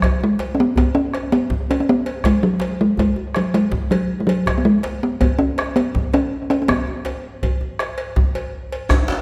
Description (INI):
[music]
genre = west african traditional, West African drum ensemble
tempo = 108 BPM (dotted quarters)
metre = 12/8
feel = straight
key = unclear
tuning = A4 = 440 Hz
[part]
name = talking drum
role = melody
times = 0.0-8.5 s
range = F#3 to C#4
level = -20 LUFS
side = equal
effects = tape echo
[part]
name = bombo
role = percussion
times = 0.0-9.1 s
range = none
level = -26 LUFS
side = equal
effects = none
[part]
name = cowbell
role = percussion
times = 0.0-9.1 s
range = none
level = -32 LUFS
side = equal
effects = none
[part]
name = djembe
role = percussion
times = 0.0-9.2 s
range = none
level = -28 LUFS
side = equal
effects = none
[part]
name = djembe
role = percussion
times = 8.9-9.2 s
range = none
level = -27 LUFS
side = equal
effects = none
[part]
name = shekere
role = percussion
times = 8.9-9.1 s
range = none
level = -32 LUFS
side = equal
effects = none
[sound]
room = wet recital hall reverb, RT60 1.6 s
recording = none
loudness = -19 LUFS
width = mono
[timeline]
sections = 0.0-8.9 A section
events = none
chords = none